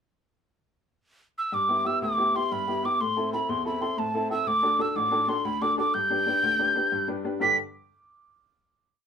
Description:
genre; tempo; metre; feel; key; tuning
celtic folk, Celtic slip jig; 122 BPM (dotted quarters); 9/8; straight; G major; A4 = 440 Hz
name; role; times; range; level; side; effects
mellow hollow wooden whistle; melody; 1.4-7.6 s; A5 to B6; -24 LUFS; equal; none
bright upright piano; accompaniment; 1.5-7.6 s; A1 to D6; -29 LUFS; left 1 dB; none
room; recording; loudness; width
moderate small room ambience, RT60 0.5 s; minimal, uncompressed stereo recording; -23 LUFS; side -7 dB against mid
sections
0.0-1.5 pickup bar; 1.5-7.4 A section; 7.4-8.9 final chord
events
none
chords
0.0 N.C.; 1.5 G6; 3.0 Am; 4.5 D; 5.9 G

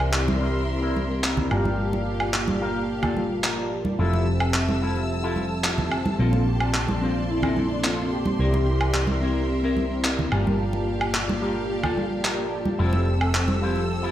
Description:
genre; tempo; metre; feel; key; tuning
nu-disco, nu disco; 109 BPM; 4/4; straight; G dorian; A4 = 440 Hz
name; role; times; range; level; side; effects
mellow synth brass; accompaniment; 0.0-14.1 s; F3 to E6; -27 LUFS; equal; chorus, cassette tape, digital delay
clear symphonic violin section; sustained chords; 0.0-14.1 s; G4 to E6; -34 LUFS; equal; none
hollow-body short-scale fingered electric bass; bass; 0.0-14.1 s; F1 to C2; -26 LUFS; equal; none
electronic woodblock and handclaps; drums; 0.0-13.5 s; none; -28 LUFS; equal; none
electric guitar with an envelope filter; riff; 0.1-14.1 s; C4 to A5; -31 LUFS; left 2 dB; wide subtle chorus, low-pass filter, digital delay
congas; percussion; 0.3-13.9 s; none; -29 LUFS; right 2 dB; none
wide unison lead; melody; 6.2-9.7 s; D4 to G4; -30 LUFS; left 1 dB; lush chorus, dub echo
room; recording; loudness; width
moderate plate reverb, RT60 1.9 s, small room ambience; played on a big sound system in a bare room, large studio reverb; -21 LUFS; side -12 dB against mid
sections
0.0-14.1 A section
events
filter sweep on clean electric guitar 0.0-14.1; clean electric guitar fill 5.4-6.2, 13.9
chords
0.0 C7; 1.5 Gm7; 4.0 Fmaj7; 6.2 Bbmaj9; 8.4 C7; 10.3 Gm7; 12.8 Fmaj7

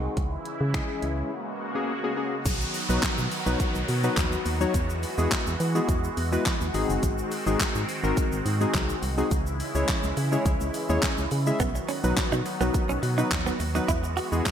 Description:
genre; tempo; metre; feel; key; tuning
dance-pop; 105 BPM; 4/4; straight; B major; A4 = 440 Hz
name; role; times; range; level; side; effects
warm analog keys; accompaniment; 0.0-14.5 s; F#3 to E5; -29 LUFS; left 2 dB; chorus, sidechain pumping
filtered supersaw swell; sustained chords; 0.0-14.5 s; C#3 to F#4; -33 LUFS; equal; phaser, sidechain pumping
organ-like FM bass; bass; 0.0-14.4 s; F#1 to E3; -28 LUFS; equal; sidechain pumping
pop drum kit; drums; 0.2-14.5 s; crash cymbal, finger snaps, handclaps, hi-hat, kick drum, shaker, snare drum; -29 LUFS; equal; gated reverb
swell and downlifter; sound effects; 1.2-7.0 s; none; -37 LUFS; equal; none
egg shaker; percussion; 2.5-14.5 s; none; -46 LUFS; right 9 dB; none
direct-recorded clean electric guitar; riff; 11.6-14.3 s; B3 to F#4; -31 LUFS; right 6 dB; lush chorus
room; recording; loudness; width
moderate lush hall reverb, RT60 1.8 s, digital ambience; bright 1980s-style digital production; -24 LUFS; side -9 dB against mid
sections
0.0-2.5 A section; 2.5-14.5 B section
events
swell 1.2-2.5; drop 2.5-14.5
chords
0.2 C#m; 1.3 F#add9; 2.5 B; 4.7 Eadd9; 6.7 G#7; 9.3 C#m; 11.6 B; 13.9 Eadd9

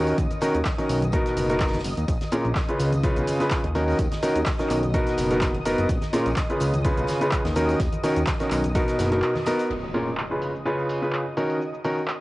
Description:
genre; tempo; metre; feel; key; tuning
piano house; 126 BPM; 4/4; swing 54% on 16ths; Eb minor; A4 = 440 Hz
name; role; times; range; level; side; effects
analog string pad; sustained chords; 0.0-12.2 s; Eb5 to Eb6; -36 LUFS; left 1 dB; ensemble chorus, sidechain pumping, cassette tape
clear baby grand piano; riff; 0.0-12.0 s; Bb2 to Cb5; -24 LUFS; equal; sidechain pumping, low-pass filter, cassette tape, tape echo
fat analog bass; bass; 0.0-9.2 s; F#1 to Eb2; -26 LUFS; equal; sidechain pumping
punchy analog drum machine; drums; 0.1-12.2 s; crash cymbal, handclaps, hi-hat, shaker; -33 LUFS; equal; low-pass filter on hats, cassette tape, low-pass filter on perc, low-pass filter on snare, low-pass filter on cymbals
unplugged drum kit; drums; 0.1-9.7 s; hi-hat, snare drum; -42 LUFS; right 1 dB; none
tambourine and congas; percussion; 0.1-9.7 s; none; -37 LUFS; left 1 dB; none
electronic kick drum; drums; 0.2-8.9 s; none; -26 LUFS; equal; cassette tape
impact; sound effects; 9.7-11.6 s; none; -38 LUFS; equal; none
room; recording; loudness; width
light reverb; home recording on cassette, nothing above 10.8 kHz; -21 LUFS; side -19 dB against mid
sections
0.0-9.7 A section; 9.7-12.2 B section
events
band accent 9.2; impact 9.7-11.6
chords
0.0 Ebm7; 1.1 Bmaj7; 2.1 Bbm7; 2.8 Db7; 3.8 Ebm7; 4.9 Bmaj7; 5.9 Bbm7; 6.6 Db7; 7.6 Ebm7; 8.8 Bmaj7; 9.7 Bbm7; 10.4 Db7; 11.4 Ebm7

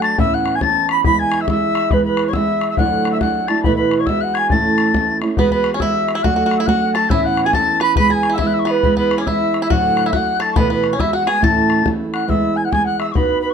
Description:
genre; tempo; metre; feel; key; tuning
celtic folk, Celtic polka; 139 BPM; 2/4; swing 63% on 8ths; A major; A4 = 439 Hz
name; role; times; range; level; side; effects
mellow wooden flute; melody; 0.0-13.5 s; B4 to B5; -19 LUFS; right 1 dB; none
reedy wooden whistle; second line; 0.0-13.5 s; B5 to B6; -22 LUFS; left 5 dB; none
fingerpicked steel-string acoustic guitar; accompaniment; 0.0-13.5 s; D2 to B4; -19 LUFS; right 3 dB; none
bodhran; percussion; 0.0-13.3 s; none; -22 LUFS; left 4 dB; none
bluegrass banjo; second line; 5.4-12.1 s; B3 to B4; -26 LUFS; right 2 dB; none
room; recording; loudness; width
light reverb; close, detailed microphones; -14 LUFS; side -7 dB against mid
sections
0.0-5.4 A section; 5.4-12.3 A section; 12.3-13.5 B section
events
none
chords
0.2 Aadd9; 1.0 E; 2.8 Dadd9; 3.6 Esus4; 4.1 Eadd9; 4.5 A; 5.4 Eadd9; 6.2 D/F#; 7.1 Aadd9; 8.0 E; 9.7 Dadd9; 10.6 Esus4; 11.0 Eadd9; 11.4 A; 12.3 E

